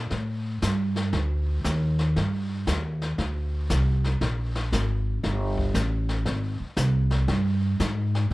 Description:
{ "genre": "jazz piano trio", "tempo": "117 BPM", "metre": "4/4", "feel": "swing 66% on 8ths", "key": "unclear", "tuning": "A4 = 440 Hz", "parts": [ { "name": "upright bass", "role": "bass", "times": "0.0-8.3 s", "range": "G1 to A2", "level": "-24 LUFS", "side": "equal", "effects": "none" }, { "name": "jazz brush drum kit", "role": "drums", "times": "0.1-8.3 s", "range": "brushed snare drum, hi-hat, kick drum, snare drum", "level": "-32 LUFS", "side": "left 2 dB", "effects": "none" } ], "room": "little or no reverb", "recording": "none", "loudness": "-23 LUFS", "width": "side -19 dB against mid", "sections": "0.0-8.3 A section", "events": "none", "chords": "none" }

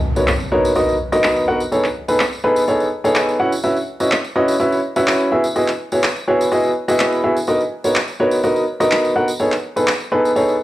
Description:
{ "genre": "piano house", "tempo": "125 BPM", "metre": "4/4", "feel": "straight", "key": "B major", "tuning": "A4 = 440 Hz", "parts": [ { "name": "impact", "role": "sound effects", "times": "0.0-1.7 s", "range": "none", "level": "-24 LUFS", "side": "equal", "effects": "none" }, { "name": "clear upright piano", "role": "riff", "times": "0.2-10.5 s", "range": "B3 to F#5", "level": "-16 LUFS", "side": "equal", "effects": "cassette tape, analog delay" }, { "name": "tambourine", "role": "percussion", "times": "0.2-10.6 s", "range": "none", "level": "-33 LUFS", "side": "right 1 dB", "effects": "none" }, { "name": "electronic handclaps", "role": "drums", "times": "0.3-10.0 s", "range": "none", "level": "-20 LUFS", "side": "equal", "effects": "overdrive, low-pass filter on hats, cassette tape, low-pass filter on perc, low-pass filter on snare" } ], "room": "moderate studio reverb, RT60 0.7 s", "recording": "home recording on cassette", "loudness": "-15 LUFS", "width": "side -15 dB against mid", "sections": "0.0-10.6 A section", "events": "impact 0.0-1.7", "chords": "0.0 Bmaj7; 1.7 Amaj9#11; 3.4 F#7sus4; 5.3 Emaj9; 7.5 Bmaj7; 9.4 Amaj9#11" }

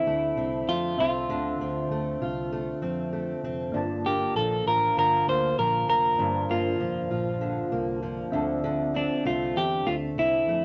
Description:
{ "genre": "indie pop, bedroom pop", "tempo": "98 BPM", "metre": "4/4", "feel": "straight", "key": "G dorian", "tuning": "A4 = 438 Hz", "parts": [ { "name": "clean electric guitar", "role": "melody", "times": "0.0-10.6 s", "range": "D4 to C5", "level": "-28 LUFS", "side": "equal", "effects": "none" }, { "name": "fingerpicked steel-string acoustic guitar", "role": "accompaniment", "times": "0.0-10.6 s", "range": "G2 to F4", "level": "-34 LUFS", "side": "equal", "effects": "vibrato effect" }, { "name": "soft electric-piano-like synth keys", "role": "accompaniment", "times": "0.0-10.6 s", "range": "Bb3 to A5", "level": "-36 LUFS", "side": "equal", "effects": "chorus, phaser" }, { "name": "vintage muted fingered electric bass", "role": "bass", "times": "0.1-10.6 s", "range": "F1 to F2", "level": "-37 LUFS", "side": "equal", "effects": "none" } ], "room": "wet small room reverb, RT60 0.5 s", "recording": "nothing above 7.7 kHz", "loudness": "-27 LUFS", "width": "mono", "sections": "0.0-10.6 A section", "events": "none", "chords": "0.0 Dm7; 3.7 Gm7; 8.3 Dm7" }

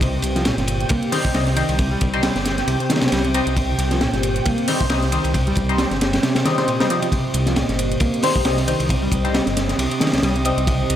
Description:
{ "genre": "breakbeat, breaks", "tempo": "135 BPM", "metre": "4/4", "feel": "swing 56% on 16ths", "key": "C minor", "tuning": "A4 = 439 Hz", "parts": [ { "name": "lush unison pad", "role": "sustained chords", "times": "0.0-11.0 s", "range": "C3 to G5", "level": "-25 LUFS", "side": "equal", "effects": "chorus, phaser, vintage 12-bit sampler grit, sidechain pumping" }, { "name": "overdriven picked electric bass", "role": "riff", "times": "0.0-11.0 s", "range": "Bb2 to Bb3", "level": "-24 LUFS", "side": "equal", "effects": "vintage 12-bit sampler grit, tape echo" }, { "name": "dark detuned saw bass", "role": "bass", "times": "0.0-11.0 s", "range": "G1 to C2", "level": "-24 LUFS", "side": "equal", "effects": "none" }, { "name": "crunchy breakbeat drum kit", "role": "drums", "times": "0.0-11.0 s", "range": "hi-hat, kick drum, ride cymbal, snare drum", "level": "-21 LUFS", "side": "equal", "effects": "none" }, { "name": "electronic hi-hat", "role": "drums", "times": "0.0-11.0 s", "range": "none", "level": "-32 LUFS", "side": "right 2 dB", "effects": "overdrive" }, { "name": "band-passed chord stab", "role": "stabs", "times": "1.1-10.6 s", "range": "G3 to Eb5", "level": "-25 LUFS", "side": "left 3 dB", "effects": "phaser, analog chorus, tape echo" } ], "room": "light reverb, studio reverb", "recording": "none", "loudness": "-17 LUFS", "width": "side -10 dB against mid", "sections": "0.0-11.0 A section", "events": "none", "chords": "0.0 Cm" }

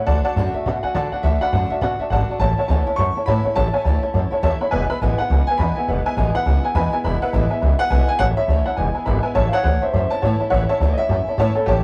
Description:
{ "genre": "rockabilly", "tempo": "207 BPM", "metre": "4/4", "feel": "swing 61% on 8ths", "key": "A major", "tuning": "A4 = 439 Hz", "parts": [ { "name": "honky-tonk upright piano", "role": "accompaniment", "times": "0.0-11.8 s", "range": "B4 to B5", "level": "-25 LUFS", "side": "equal", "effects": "none" }, { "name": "picked acoustic archtop guitar", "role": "accompaniment", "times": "0.0-11.8 s", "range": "E2 to F#4", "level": "-31 LUFS", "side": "equal", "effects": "none" }, { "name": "upright bass", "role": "bass", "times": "0.1-11.8 s", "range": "E1 to D3", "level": "-22 LUFS", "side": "equal", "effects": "none" }, { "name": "warm upright piano", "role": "melody", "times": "0.5-11.8 s", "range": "G4 to C#6", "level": "-26 LUFS", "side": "equal", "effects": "none" } ], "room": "moderate studio reverb, RT60 0.6 s", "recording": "rough rehearsal-room recording, tube saturation", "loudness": "-19 LUFS", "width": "mono", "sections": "0.0-9.4 A section; 9.4-11.8 B section", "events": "upright piano solo 9.4-11.8", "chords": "0.1 D; 2.4 A; 4.7 E; 8.2 A; 8.8 E; 9.4 A" }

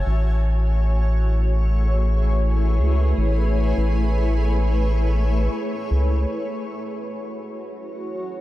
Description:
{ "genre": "ambient dub", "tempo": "free time", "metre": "none", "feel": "none", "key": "unclear", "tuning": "A4 = 439 Hz", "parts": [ { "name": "granular cloud pad", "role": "sustained chords", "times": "0.0-8.4 s", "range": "A3 to A5", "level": "-26 LUFS", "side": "equal", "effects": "built-in reverb" }, { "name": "round analog bass", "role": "bass", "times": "0.0-6.3 s", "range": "A1 to C#2", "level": "-19 LUFS", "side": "equal", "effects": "none" } ], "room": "light reverb, digital ambience", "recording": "none", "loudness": "-18 LUFS", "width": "side -16 dB against mid", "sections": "0.0-6.3 A section; 6.3-8.4 B section", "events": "filter sweep on ambient pad 6.3-8.4", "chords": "0.1 Amaj9; 6.3 F#m7" }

